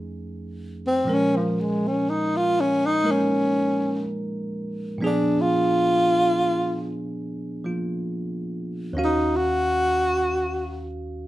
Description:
jazz ballad; 61 BPM; 4/4; swing 67% on 8ths; A4 = 440 Hz
bell-like tine electric piano; accompaniment; 0.0-11.3 s; Eb2 to F5; -26 LUFS; right 1 dB
breathy tenor saxophone; melody; 0.9-10.9 s; F3 to Gb4; -21 LUFS; equal
moderate large studio reverb, RT60 0.8 s; minimal, uncompressed stereo recording; -21 LUFS; side -16 dB against mid
0.0-11.3 A section
tenor saxophone solo 0.0-11.3
0.0 F7alt; 1.0 Bbm7; 5.0 Bb7b9; 9.0 Ebm9
0.06 | 1.05 2.04 3.03 4.02 | 5.01 6.00 6.99 7.97 | 8.96 9.95 10.94

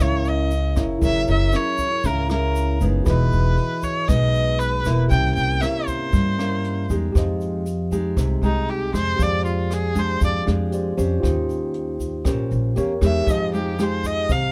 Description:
bossa nova; 118 BPM; 4/4; straight; F minor from 7.2 s; A4 = 441 Hz
clear erhu; melody; 0.0-14.5 s; Eb4 to G5; -27 LUFS; equal
bright tine electric piano; accompaniment; 0.0-14.5 s; Db4 to E5; -32 LUFS; equal
nylon-string guitar; accompaniment; 0.0-14.5 s; Bb2 to C5; -28 LUFS; equal
upright bass; bass; 0.0-14.5 s; E1 to G2; -25 LUFS; equal
tube shaker; percussion; 0.0-14.5 s; -48 LUFS; equal
jazz brush drum kit; drums; 0.3-14.4 s; hi-hat, kick drum, rim click; -29 LUFS; equal
little or no reverb; -21 LUFS; mono
0.0-7.2 A section; 7.2-14.5 B section
erhu solo 7.2-14.5
0.0 F#7; 3.1 Emaj7; 5.1 C7b9; 7.2 Fm9; 9.2 Fm69; 11.2 Eb13; 12.8 Edim7; 13.3 Fm9
0.00 0.52 | 1.03 1.54 2.05 2.56 | 3.07 3.58 4.09 4.60 | 5.11 5.62 6.13 6.64 | 7.15 7.66 8.17 8.68 | 9.19 9.71 10.21 10.72 | 11.24 11.75 12.26 12.77 | 13.28 13.79 14.30

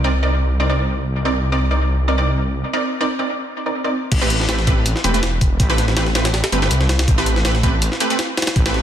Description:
drum and bass, jungle; 162 BPM; 4/4; swing 53% on 16ths; A4 = 441 Hz
orchestra-hit-like synth stab; stabs; 0.0-8.8 s; A3 to D5; -20 LUFS; right 1 dB; built-in reverb, dub echo
detuned saw bass; bass; 0.0-8.8 s; E1 to C2; -19 LUFS; equal; tube saturation
jungle sampler-style drum kit; drums; 4.1-8.8 s; crash cymbal, hi-hat, kick drum, snare drum; -18 LUFS; equal
light reverb, digital ambience; dense, heavily limited modern master; -16 LUFS; side -10 dB against mid
0.0-4.1 A section; 4.1-8.8 B section
break 2.6-4.1; drop 4.1-8.8
0.0 Cm9; 4.1 Am9
0.04 0.41 0.78 | 1.15 1.52 1.89 2.26 | 2.63 3.00 3.37 3.75 | 4.12 4.49 4.86 5.23 | 5.60 5.97 6.34 6.71 | 7.08 7.45 7.82 8.19 | 8.56

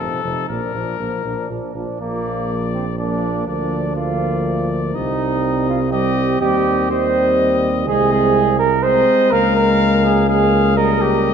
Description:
classical, brass quintet; 123 BPM; 3/4; straight; Bb major, Ab major from 7.9 s; A4 = 437 Hz
brilliant trumpet; melody; 0.0-11.3 s; A4 to F5; -25 LUFS; left 9 dB
mellow flugelhorn; second line; 0.0-11.3 s; Bb3 to C5; -19 LUFS; right 5 dB
warm French horn; accompaniment; 0.0-11.3 s; F3 to C4; -23 LUFS; left 4 dB
warm trombone; accompaniment; 0.0-11.3 s; Bb2 to Ab3; -24 LUFS; equal
warm tuba; bass; 0.0-11.3 s; F1 to Eb2; -22 LUFS; right 2 dB
wet scoring stage reverb, RT60 1.9 s; dark, warm production; -15 LUFS; side -7 dB against mid
0.0-2.0 A section; 2.0-11.3 B section
0.0 F7; 0.5 Bb; 3.5 Bb/D; 5.0 Cm; 6.4 Cm/Eb; 7.9 Ab/C; 9.3 Bbm7/Db; 10.8 Eb7/Db
| 0.49 1.00 1.50 | 2.00 2.50 2.99 | 3.48 3.97 4.46 | 4.96 5.44 5.93 | 6.41 6.91 7.40 | 7.88 8.36 8.84 | 9.32 9.81 10.29 | 10.77 11.27

